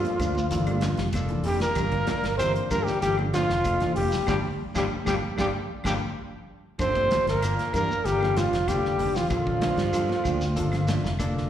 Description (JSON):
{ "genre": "afrobeat", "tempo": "96 BPM", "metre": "4/4", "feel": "straight", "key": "G dorian", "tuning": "A4 = 440 Hz", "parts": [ { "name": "breathy trumpet", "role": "melody", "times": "0.0-11.2 s", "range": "F4 to C5", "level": "-26 LUFS", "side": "equal", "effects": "slapback echo" }, { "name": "bright trombone section", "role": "second line", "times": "0.0-11.2 s", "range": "F2 to C3", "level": "-40 LUFS", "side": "left 1 dB", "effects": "none" }, { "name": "clear alto saxophone", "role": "second line", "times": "0.0-11.2 s", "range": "F3 to C4", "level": "-37 LUFS", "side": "right 5 dB", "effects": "slapback echo" }, { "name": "barky tine electric piano", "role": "accompaniment", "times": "0.0-11.5 s", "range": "F3 to G5", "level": "-38 LUFS", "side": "left 3 dB", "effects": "overdrive, slapback echo" }, { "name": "mellow electric guitar", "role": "arpeggios", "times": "0.0-11.5 s", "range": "D3 to G3", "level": "-33 LUFS", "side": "left 6 dB", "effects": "slapback echo" }, { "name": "fingered electric bass", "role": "bass", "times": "0.0-11.5 s", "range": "F1 to G2", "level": "-29 LUFS", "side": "equal", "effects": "none" }, { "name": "warm soul drum kit", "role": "drums", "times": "0.0-11.4 s", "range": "hi-hat, kick drum, snare drum", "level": "-34 LUFS", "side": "equal", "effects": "none" }, { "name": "congas", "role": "percussion", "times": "0.0-11.4 s", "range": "none", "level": "-36 LUFS", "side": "right 2 dB", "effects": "slapback echo" }, { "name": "mellow electric guitar", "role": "stabs", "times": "0.1-11.5 s", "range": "F3 to D4", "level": "-36 LUFS", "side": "right 7 dB", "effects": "slapback echo" }, { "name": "claves", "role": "percussion", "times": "0.2-11.4 s", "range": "none", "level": "-43 LUFS", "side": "equal", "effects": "slapback echo" }, { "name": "shekere", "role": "percussion", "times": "0.2-11.4 s", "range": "none", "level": "-38 LUFS", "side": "right 1 dB", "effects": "slapback echo" } ], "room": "light reverb", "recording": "live gig heard through the venue's PA, recital hall reverb", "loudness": "-23 LUFS", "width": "side -10 dB against mid", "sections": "0.0-6.8 A section; 6.8-11.5 A section", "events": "band accent 4.3-6.8; tine electric piano fill 4.9-6.8, 9.9-11.5; drum fill 6.5-6.8", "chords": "0.0 Gm7" }